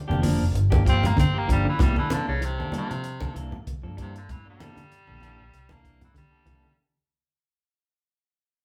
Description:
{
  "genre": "afrobeat",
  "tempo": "96 BPM",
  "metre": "4/4",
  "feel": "swing 55% on 16ths",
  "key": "unclear",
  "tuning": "A4 = 439 Hz",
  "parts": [
    { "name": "vintage muted fingered electric bass", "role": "bass", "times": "0.0-6.6 s", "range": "F1 to C3", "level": "-28 LUFS", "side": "equal", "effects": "none" },
    { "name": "electric guitar at the edge of break-up", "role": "stabs", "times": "0.1-6.7 s", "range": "E3 to A4", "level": "-34 LUFS", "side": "equal", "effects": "none" },
    { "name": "congas", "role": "percussion", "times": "0.1-6.6 s", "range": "none", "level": "-31 LUFS", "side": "equal", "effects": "none" },
    { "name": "compact cocktail drum kit", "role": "drums", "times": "0.2-6.6 s", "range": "hi-hat, kick drum", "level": "-28 LUFS", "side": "equal", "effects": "none" },
    { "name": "clean electric guitar", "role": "arpeggios", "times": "0.7-6.7 s", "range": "C3 to G3", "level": "-35 LUFS", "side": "equal", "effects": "none" },
    { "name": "raspy baritone saxophone", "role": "melody", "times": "0.9-6.8 s", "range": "C3 to C4", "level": "-33 LUFS", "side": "equal", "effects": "none" }
  ],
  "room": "moderate large studio reverb, RT60 0.8 s",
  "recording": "band playing live in one room",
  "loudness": "-23 LUFS",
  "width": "mono",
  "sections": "0.0-6.8 A section",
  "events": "fade-out 0.0-6.8; baritone saxophone solo 0.0-6.8",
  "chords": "0.0 Gm7; 1.8 C13"
}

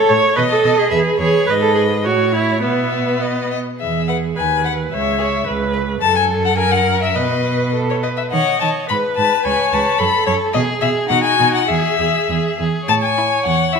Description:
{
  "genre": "quick classical-period movement for string quartet",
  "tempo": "99-111 BPM",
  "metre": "2/4",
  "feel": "rubato",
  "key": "E major",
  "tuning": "A4 = 440 Hz",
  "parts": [
    { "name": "clear violin", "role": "melody", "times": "0.0-13.8 s", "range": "B4 to B5", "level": "-18 LUFS", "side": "left 7 dB", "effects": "none" },
    { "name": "rich violin", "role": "second line", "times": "0.0-13.8 s", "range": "D#4 to E5", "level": "-23 LUFS", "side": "left 2 dB", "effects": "none" },
    { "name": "clear viola", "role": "accompaniment", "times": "0.0-13.8 s", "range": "B3 to D#5", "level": "-19 LUFS", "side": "right 3 dB", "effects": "none" },
    { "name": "rich cello", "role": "bass", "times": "0.1-13.8 s", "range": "C#2 to D#3", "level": "-21 LUFS", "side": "right 4 dB", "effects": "none" }
  ],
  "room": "wet recital hall reverb, RT60 1.8 s",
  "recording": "none",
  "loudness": "-14 LUFS",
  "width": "side -5 dB against mid",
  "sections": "0.0-3.8 A section; 3.8-12.9 B section",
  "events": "none",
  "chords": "0.4 B; 0.9 E; 1.5 G#m; 2.1 A; 2.6 Bsus4; 3.8 E; 4.4 B/D#; 4.9 C#m; 5.5 Bsus2/C#; 6.0 F#m; 6.6 F#; 7.2 B; 8.3 D#m7; 8.9 G#m; 9.4 C#5; 10.0 F#m; 10.5 E/B (rootless); 11.1 B; 11.7 E; 12.9 A"
}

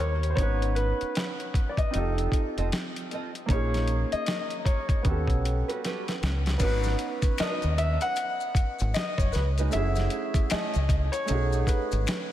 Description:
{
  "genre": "R&B, neo-soul",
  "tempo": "77 BPM",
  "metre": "4/4",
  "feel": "swing 61% on 16ths",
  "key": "G# minor",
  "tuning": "A4 = 436 Hz",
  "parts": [
    { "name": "warm grand piano", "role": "melody", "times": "0.0-12.3 s", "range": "B4 to F#5", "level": "-32 LUFS", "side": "left 2 dB", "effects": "ping-pong delay" },
    { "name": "warm upright piano", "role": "accompaniment", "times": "0.0-12.3 s", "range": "G3 to C#5", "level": "-33 LUFS", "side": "right 3 dB", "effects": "wide subtle chorus" },
    { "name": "deep dub fingered electric bass", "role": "bass", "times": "0.0-12.0 s", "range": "F1 to D#2", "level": "-26 LUFS", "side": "equal", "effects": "none" },
    { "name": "boom bap sampler-style drum kit", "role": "drums", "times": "0.0-12.3 s", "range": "crash cymbal, hi-hat, kick drum, snare drum", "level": "-28 LUFS", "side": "equal", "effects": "none" },
    { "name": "nylon-string guitar", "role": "second line", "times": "2.6-12.1 s", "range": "G3 to Eb5", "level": "-38 LUFS", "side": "right 4 dB", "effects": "lush chorus, ping-pong delay" },
    { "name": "maracas and finger snaps", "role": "percussion", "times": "6.6-12.3 s", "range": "none", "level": "-42 LUFS", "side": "left 7 dB", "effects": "none" }
  ],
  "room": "light reverb, small room ambience",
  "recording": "none",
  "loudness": "-24 LUFS",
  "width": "side -12 dB against mid",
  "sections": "0.0-6.6 A section; 6.6-12.3 B section",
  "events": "drum fill 5.8-6.6",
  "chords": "0.4 G#m7; 1.9 F7; 3.5 A#m7; 5.0 D#7alt; 6.6 G#m7; 9.7 F#m9; 11.3 B7"
}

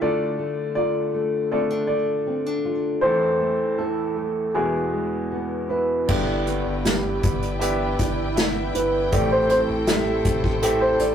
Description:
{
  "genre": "pop ballad",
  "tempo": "79 BPM",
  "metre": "4/4",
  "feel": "straight",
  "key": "unclear",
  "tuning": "A4 = 440 Hz",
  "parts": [
    { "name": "warm concert grand piano", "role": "melody", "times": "0.0-11.1 s", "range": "G#4 to E5", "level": "-24 LUFS", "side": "equal", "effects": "none" },
    { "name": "bright upright piano", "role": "accompaniment", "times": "0.0-11.1 s", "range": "E2 to A4", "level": "-26 LUFS", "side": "equal", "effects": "none" },
    { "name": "nylon-string guitar", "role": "arpeggios", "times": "0.0-11.1 s", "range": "E2 to F4", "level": "-27 LUFS", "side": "equal", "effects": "tape echo" },
    { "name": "warm studio string section", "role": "sustained chords", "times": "6.1-11.1 s", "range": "E4 to G5", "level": "-31 LUFS", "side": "equal", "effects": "none" },
    { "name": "warm sub bass", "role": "bass", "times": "6.1-11.1 s", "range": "G1 to A1", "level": "-31 LUFS", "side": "left 1 dB", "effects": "none" },
    { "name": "unplugged drum kit", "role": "drums", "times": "6.1-11.1 s", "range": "crash cymbal, hi-hat, kick drum, snare drum", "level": "-24 LUFS", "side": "equal", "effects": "none" }
  ],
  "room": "moderate booth ambience, RT60 0.3 s",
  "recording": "rough rehearsal-room recording, tube saturation",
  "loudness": "-20 LUFS",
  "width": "side -8 dB against mid",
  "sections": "0.0-6.1 A section; 6.1-11.1 B section",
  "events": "none",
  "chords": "0.0 Dm; 3.0 Am/E; 4.5 E; 6.1 G6; 9.1 Am7"
}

